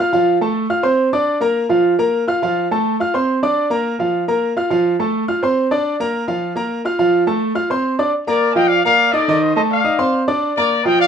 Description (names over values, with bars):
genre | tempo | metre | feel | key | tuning
latin | 210 BPM | 4/4 | straight | Bb major | A4 = 440 Hz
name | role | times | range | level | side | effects
clear grand piano | accompaniment | 0.0-11.1 s | Eb3 to F6 | -15 LUFS | right 1 dB | none
warm trumpet section | melody | 8.3-11.1 s | A4 to A5 | -16 LUFS | left 3 dB | none
room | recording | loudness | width
moderate studio ambience, RT60 0.5 s | nothing above 10.3 kHz | -15 LUFS | side -7 dB against mid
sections
0.0-8.1 A section; 8.1-11.1 A section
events
none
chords
0.1 F; 1.3 Bb; 2.4 F; 3.6 Bb; 4.7 F; 5.8 Bb; 7.0 F; 8.1 Bb; 9.3 F7; 10.4 Bb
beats
| 0.13 0.42 0.70 0.99 | 1.28 1.56 1.85 2.13 | 2.42 2.71 2.99 3.28 | 3.56 3.85 4.13 4.42 | 4.71 4.99 5.28 5.56 | 5.85 6.13 6.42 6.70 | 6.99 7.28 7.56 7.84 | 8.13 8.42 8.70 8.99 | 9.27 9.56 9.84 10.13 | 10.41 10.70 10.98